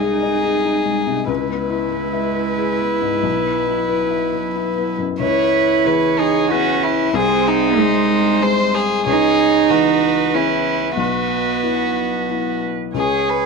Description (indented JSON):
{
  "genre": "neoclassical piano and strings",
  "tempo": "93 BPM",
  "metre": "3/4",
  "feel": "rubato",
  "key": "C# minor",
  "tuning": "A4 = 436 Hz",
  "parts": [
    { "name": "rich violin", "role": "melody", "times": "0.0-13.5 s", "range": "D#4 to C#5", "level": "-20 LUFS", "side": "left 6 dB", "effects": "none" },
    { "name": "warm cello", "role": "second line", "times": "0.0-13.5 s", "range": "F#3 to G#4", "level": "-20 LUFS", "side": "right 13 dB", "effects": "none" },
    { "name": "felt-muted upright piano", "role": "accompaniment", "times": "0.0-13.5 s", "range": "B1 to E5", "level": "-23 LUFS", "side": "left 12 dB", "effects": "none" },
    { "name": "rich viola", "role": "accompaniment", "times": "0.0-13.5 s", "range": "D#4 to C#5", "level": "-24 LUFS", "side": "right 13 dB", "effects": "none" }
  ],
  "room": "light reverb, small room reverb",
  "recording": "1960s-style stereo with parts hard left and right",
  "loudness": "-15 LUFS",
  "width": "side -4 dB against mid",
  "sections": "0.0-5.2 A section; 5.2-13.5 B section",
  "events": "none",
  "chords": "0.0 G#/B#; 1.3 C#m7; 3.2 Bsus4; 5.2 C#m7; 7.1 G#/B#; 9.1 C#m7; 11.0 Bsus4; 13.0 C#7(no3)"
}